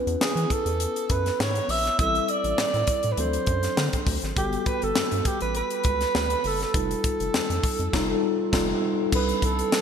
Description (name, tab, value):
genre	polished 1980s jazz-funk pop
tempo	101 BPM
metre	4/4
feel	swing 54% on 16ths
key	unclear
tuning	A4 = 440 Hz
part	mellow tine electric piano	accompaniment	0.0-9.8 s	E3 to B4	-28 LUFS	left 2 dB	slow stereo tremolo, wide subtle chorus
part	round analog bass	bass	0.1-9.6 s	F1 to E3	-29 LUFS	equal	none
part	crisp fusion drum kit	drums	0.1-9.8 s	crash cymbal, hi-hat, kick drum, snare drum	-27 LUFS	left 1 dB	gated reverb
part	breathy alto saxophone	melody	0.2-9.8 s	G4 to E5	-26 LUFS	right 3 dB	none
room	moderate lush hall reverb, RT60 2.6 s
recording	bright 1980s-style digital production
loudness	-22 LUFS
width	side -7 dB against mid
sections	0.0-9.1 A section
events	band accent 7.9-9.1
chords	0.0 E6; 2.0 Am7; 3.2 D7; 4.4 Gmaj9; 6.7 F9; 9.1 C69